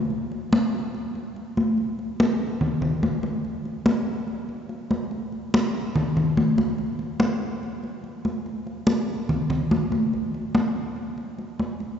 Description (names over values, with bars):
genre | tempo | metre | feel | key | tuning
jazz | 144 BPM | 4/4 | straight | none | none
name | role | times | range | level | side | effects
congas | percussion | 0.1-12.0 s | none | -23 LUFS | equal | none
room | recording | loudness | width
wet church reverb, RT60 3.4 s | recorded in a church or concert hall, nothing above 7.7 kHz | -23 LUFS | side -8 dB against mid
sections
0.0-1.8 A section; 1.8-12.0 A section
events
none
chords
none